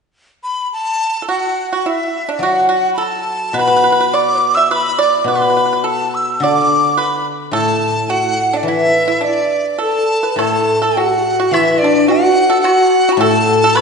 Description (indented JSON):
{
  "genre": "chinese traditional, Chinese chamber ensemble",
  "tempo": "106 BPM",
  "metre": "2/4",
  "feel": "rubato",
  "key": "unclear",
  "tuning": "A4 = 440 Hz",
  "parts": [
    { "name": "breathy dizi", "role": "melody", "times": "0.4-13.8 s", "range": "D5 to E6", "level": "-16 LUFS", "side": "equal", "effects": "none" },
    { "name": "pipa", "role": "second line", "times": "1.2-13.8 s", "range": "D4 to E5", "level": "-19 LUFS", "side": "right 5 dB", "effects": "none" },
    { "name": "guzheng", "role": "accompaniment", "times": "2.4-13.8 s", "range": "A2 to F#3", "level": "-18 LUFS", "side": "left 2 dB", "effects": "none" },
    { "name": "mellow hollow xiao", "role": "second line", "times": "9.8-13.8 s", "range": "D4 to B4", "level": "-15 LUFS", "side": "left 4 dB", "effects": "none" },
    { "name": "woodblock", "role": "percussion", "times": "10.4-13.8 s", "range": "none", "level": "-26 LUFS", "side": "left 1 dB", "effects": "none" }
  ],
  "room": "wet scoring stage reverb, RT60 1.8 s",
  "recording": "heard from further back in the room, nothing above 10.4 kHz",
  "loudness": "-12 LUFS",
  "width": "side -5 dB against mid",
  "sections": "0.1-1.3 A section; 1.3-10.4 B section; 10.4-13.8 C section",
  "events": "none",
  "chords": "none"
}